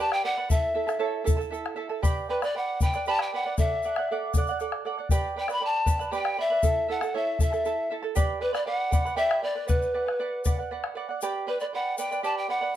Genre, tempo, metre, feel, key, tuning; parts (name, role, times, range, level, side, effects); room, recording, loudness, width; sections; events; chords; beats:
andean folk, Andean ensemble; 78 BPM (dotted quarters); 6/8; straight; A4 = 440 Hz
polished pan flute; melody; 0.0-12.7 s; B4 to B5; -27 LUFS; left 1 dB
charango; accompaniment; 0.0-12.8 s; E4 to B5; -30 LUFS; right 6 dB
tube shaker; percussion; 0.0-12.3 s; -41 LUFS; left 6 dB
bombo; percussion; 0.1-11.0 s; -26 LUFS; left 2 dB
moderate studio reverb, RT60 0.6 s; dark, warm production; -24 LUFS; side -12 dB against mid
0.0-11.2 A section; 11.2-12.8 A section
0.0 G; 0.5 A; 2.0 G; 3.6 D; 5.1 G; 6.6 A; 8.2 G; 9.7 Bm; 11.2 G
| 0.51 1.27 | 2.04 2.81 | 3.57 4.34 | 5.10 5.87 | 6.63 7.40 | 8.17 8.93 | 9.70 10.46 | 11.22 11.99